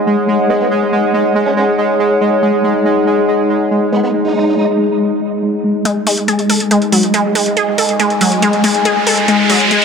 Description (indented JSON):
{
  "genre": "psychedelic trance",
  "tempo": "140 BPM",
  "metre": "4/4",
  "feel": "straight",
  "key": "unclear",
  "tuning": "A4 = 439 Hz",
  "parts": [
    { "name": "pulsing gated texture", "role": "sustained chords", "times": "0.0-9.8 s", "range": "G#3", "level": "-15 LUFS", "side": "equal", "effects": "chorus, built-in reverb" },
    { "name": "warbly tape-like pad", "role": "texture", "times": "0.0-9.8 s", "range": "D#4 to G#5", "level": "-16 LUFS", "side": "left 1 dB", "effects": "chorus, built-in reverb" },
    { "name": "formant-sweep wobble bass", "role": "second line", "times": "0.5-4.7 s", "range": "B3 to D#4", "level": "-22 LUFS", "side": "right 4 dB", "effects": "chorus, high-pass filter, dub echo" },
    { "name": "wide unison pluck", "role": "riff", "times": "5.9-9.8 s", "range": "F#3 to A4", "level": "-15 LUFS", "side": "moving between left 4 dB and right 6 dB", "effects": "auto-pan, dub echo" },
    { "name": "electronic hi-hat", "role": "drums", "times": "5.9-9.8 s", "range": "none", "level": "-18 LUFS", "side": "right 1 dB", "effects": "low-pass filter on hats, low-pass filter on room" },
    { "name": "riser", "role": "sound effects", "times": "7.5-9.8 s", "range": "none", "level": "-18 LUFS", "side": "right 2 dB", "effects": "none" }
  ],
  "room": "wet lush hall reverb, RT60 1.9 s",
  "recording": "high-pass filter",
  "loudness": "-11 LUFS",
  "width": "side -6 dB against mid",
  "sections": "0.0-5.9 A section; 5.9-9.8 B section",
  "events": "build-up 5.9-9.8; filter sweep on synth arpeggio sound 5.9-9.8; filter sweep 5.9-9.8; riser 7.5-9.8",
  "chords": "0.0 G#5",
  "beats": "0.28 | 0.71 1.14 1.57 2.00 | 2.42 2.85 3.28 3.71 | 4.14 4.57 5.00 5.42 | 5.85 6.28 6.71 7.14 | 7.57 8.00 8.42 8.85 | 9.28 9.71"
}